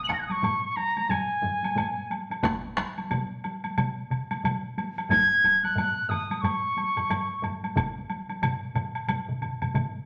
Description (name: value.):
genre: japanese traditional, taiko drum ensemble.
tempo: 90 BPM.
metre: 4/4.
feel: swing 60% on 16ths.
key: Ab suspended pentatonic.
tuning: A4 = 438 Hz.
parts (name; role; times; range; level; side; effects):
bright reedy wooden piccolo; melody; 0.0-7.4 s; Ab5 to Gb7; -27 LUFS; equal; none.
taiko ensemble; percussion; 0.1-9.9 s; none; -37 LUFS; equal; none.
taiko ensemble; percussion; 0.1-9.9 s; none; -37 LUFS; equal; none.
taiko ensemble; percussion; 0.1-7.9 s; none; -35 LUFS; equal; none.
woodblock; percussion; 0.3-9.9 s; none; -35 LUFS; equal; none.
taiko ensemble; percussion; 2.4-9.9 s; none; -33 LUFS; equal; none.
room: wet studio reverb, RT60 0.9 s.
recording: none.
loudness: -27 LUFS.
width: mono.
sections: 0.0-10.1 A section.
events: none.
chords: none.